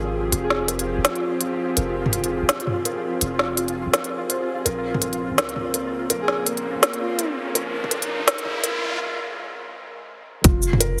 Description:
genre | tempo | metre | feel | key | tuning
half-time drum and bass | 166 BPM | 4/4 | swing 60% on 16ths, half-time | unclear | A4 = 442 Hz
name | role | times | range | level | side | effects
bowed-like drone | sustained chords | 0.0-10.4 s | Db3 to Ab4 | -32 LUFS | equal | built-in reverb, sidechain pumping
felt-muted upright piano | arpeggios | 0.0-11.0 s | F4 to C5 | -31 LUFS | equal | low-pass filter, tape echo
long sustained 808-style bass | bass | 0.0-8.3, 10.4-11.0 s | Eb1 to Db2 | -31 LUFS | equal | none
pulsing gated texture | texture | 0.0-9.0 s | F4 | -36 LUFS | equal | chorus, built-in reverb
organic electronic drum kit | drums | 0.3-10.9 s | hi-hat, shaker, snare drum, toms | -24 LUFS | equal | overdrive
breathy flute-like synth lead | melody | 0.4-0.7, 6.2-7.3 s | F4 to Ab4 | -34 LUFS | equal | chorus, tape echo
riser | sound effects | 6.2-9.0 s | none | -33 LUFS | equal | none
electronic kick drum | drums | 10.4-10.5 s | none | -18 LUFS | equal | none
room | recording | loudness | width
moderate huge ambient reverb, RT60 6.5 s | heavily compressed radio sound, high-pass filter | -23 LUFS | mono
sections
0.0-10.4 A section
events
build-up 0.0-10.4; filter sweep on felt piano 0.0-10.4; filter sweep 0.0-10.4; riser 6.2-9.0; break 9.0-10.4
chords
0.0 Fm; 4.7 Bbmadd9; 10.4 N.C.

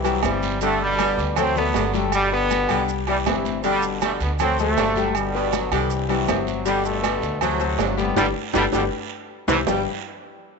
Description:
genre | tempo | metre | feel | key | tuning
latin, salsa | 159 BPM | 4/4 | straight | G major | A4 = 439 Hz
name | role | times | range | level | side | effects
brilliant trombone section | melody | 0.0-9.6 s | G2 to C4 | -24 LUFS | right 1 dB | none
clear saxophone section | second line | 0.0-9.8 s | G2 to G3 | -30 LUFS | right 12 dB | none
clear grand piano | accompaniment | 0.0-9.8 s | G3 to G5 | -25 LUFS | left 12 dB | none
upright bass | bass | 0.0-9.8 s | G1 to D2 | -28 LUFS | right 1 dB | none
agogo bells and timbales | percussion | 0.0-9.8 s | none | -28 LUFS | right 13 dB | none
congas | percussion | 0.1-9.8 s | none | -32 LUFS | left 14 dB | none
maracas | percussion | 0.1-9.8 s | none | -40 LUFS | right 16 dB | none
guiro | percussion | 0.2-9.8 s | none | -37 LUFS | right 16 dB | none
room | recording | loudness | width
light reverb, studio ambience | 1960s-style stereo with parts hard left and right, nothing above 7.9 kHz | -19 LUFS | side -4 dB against mid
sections
0.0-9.7 A section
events
band accent 8.2-9.7; drum fill 8.9-9.7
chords
0.0 C; 0.6 G; 1.4 D7; 2.1 G; 2.9 C; 3.6 G; 4.4 D7; 5.2 G; 5.9 C; 6.7 G; 7.4 D7; 8.2 G; 8.9 C; 9.7 G

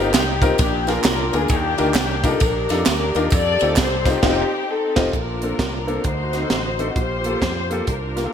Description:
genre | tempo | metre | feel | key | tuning
uptempo gospel | 132 BPM | 4/4 | swing 63% on 8ths | Bb major | A4 = 441 Hz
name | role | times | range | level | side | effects
warm studio string section | melody | 0.0-8.3 s | Bb3 to D5 | -22 LUFS | left 2 dB | digital delay
clear upright piano | accompaniment | 0.0-8.3 s | Bb2 to C5 | -24 LUFS | left 3 dB | none
modern bright fingered electric bass | bass | 0.0-8.3 s | F1 to F2 | -26 LUFS | right 1 dB | none
tight funk drum kit | drums | 0.1-8.2 s | crash cymbal, hi-hat, kick drum, ride cymbal, snare drum | -21 LUFS | right 2 dB | gated reverb
handclaps and tambourine | percussion | 0.1-4.1 s | none | -31 LUFS | right 8 dB | none
room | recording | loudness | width
moderate lush hall reverb, RT60 1.8 s, small room ambience | bright 1980s-style digital production | -17 LUFS | side -8 dB against mid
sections
0.0-5.1 A section; 5.1-8.3 B section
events
band accent 4.2-5.1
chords
0.0 F9sus4; 0.6 Bb7; 1.5 Ebmaj9; 3.3 F9; 5.1 Bbmaj9; 6.0 D7b9; 7.0 Gm9/Bb

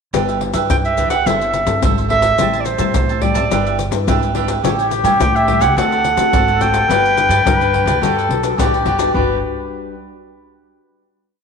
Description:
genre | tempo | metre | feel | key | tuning
samba and choro | 107 BPM | 4/4 | straight | G major | A4 = 441 Hz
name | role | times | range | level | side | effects
cavaquinho | accompaniment | 0.1-9.4 s | D4 to A5 | -22 LUFS | right 8 dB | none
nylon-string guitar | accompaniment | 0.1-9.9 s | A2 to B4 | -24 LUFS | left 9 dB | none
upright bass | bass | 0.1-9.4 s | G1 to D3 | -21 LUFS | right 2 dB | none
maracas, surdo and pandeiro | percussion | 0.1-9.3 s | none | -20 LUFS | left 3 dB | none
bright clarinet | melody | 0.7-8.6 s | C5 to G5 | -17 LUFS | right 2 dB | none
breathy trumpet | second line | 4.6-9.4 s | G4 to B4 | -20 LUFS | left 6 dB | none
room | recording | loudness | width
wet echo chamber reverb, RT60 2.1 s | 1960s-style stereo with parts hard left and right | -13 LUFS | side -6 dB against mid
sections
0.1-9.1 A section; 9.1-11.4 final chord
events
none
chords
0.1 G6; 1.3 C6/G; 2.4 Am7; 3.5 Em7/G; 4.6 A7; 5.8 D7; 6.9 Gmaj7

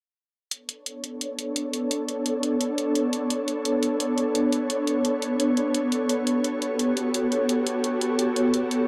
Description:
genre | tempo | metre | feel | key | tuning
liquid drum and bass | 172 BPM | 4/4 | straight | B minor | A4 = 440 Hz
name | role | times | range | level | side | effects
ethereal airy pad | sustained chords | 1.0-8.9 s | B3 to C#5 | -26 LUFS | equal | ensemble chorus, built-in reverb
electronic hi-hat | drums | 0.5-8.8 s | none | -33 LUFS | equal | none
room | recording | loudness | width
moderate lush hall reverb, RT60 1.7 s | dark, warm production | -25 LUFS | mono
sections
0.5-8.9 A section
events
filter sweep on ambient pad 0.5-8.9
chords
0.5 Bm9; 6.1 A13

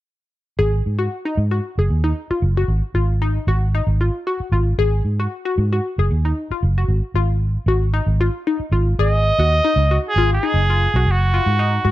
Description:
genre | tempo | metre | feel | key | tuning
afrobeat | 115 BPM | 4/4 | straight | unclear | A4 = 440 Hz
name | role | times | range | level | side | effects
glassy wavetable pluck | arpeggios | 0.6-11.9 s | D#4 to G#4 | -23 LUFS | left 4 dB | chorus
fingered electric bass | bass | 0.6-11.9 s | F#1 to G#2 | -17 LUFS | equal | none
clear trumpet | melody | 9.0-11.9 s | F#4 to D#5 | -19 LUFS | right 2 dB | none
room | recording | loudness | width
small room ambience | none | -16 LUFS | side -15 dB against mid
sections
0.6-9.0 A section; 9.0-11.9 B section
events
none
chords
0.6 G#5; 9.0 G#7(no3)

